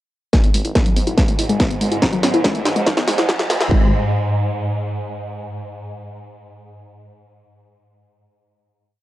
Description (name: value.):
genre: driving peak-time techno.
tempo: 142 BPM.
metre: 4/4.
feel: straight.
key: G# phrygian.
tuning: A4 = 439 Hz.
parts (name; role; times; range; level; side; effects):
warbly dusty pluck; riff; 0.3-3.9 s; F#3 to E4; -22 LUFS; left 1 dB; chorus, tube saturation, sidechain pumping, analog delay.
swarming drone; drone; 1.0-3.8 s; G#2; -24 LUFS; right 1 dB; built-in reverb, sidechain pumping.
electronic kick drum; drums; 0.3-3.8 s; none; -17 LUFS; equal; distortion.
techno drum kit; drums; 0.3-3.7 s; hi-hat, snare drum; -20 LUFS; equal; sidechain pumping on hats.
riser; sound effects; 1.5-3.7 s; none; -29 LUFS; equal; none.
dark detuned saw bass; bass; 0.4-3.9 s; F#1 to G#2; -27 LUFS; equal; none.
room: light reverb.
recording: dry, gritty hardware recording, transformer saturation, cassette tape, high-pass filter.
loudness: -15 LUFS.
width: side -15 dB against mid.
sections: 0.3-3.7 build; 3.7-5.4 final chord.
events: build-up 0.3-3.7; drum fill 0.3-3.7; filter sweep on synth arpeggio sound 0.3-3.7; filter sweep 0.3-3.7; riser 1.5-3.7.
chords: 0.3 G#m; 3.7 N.C..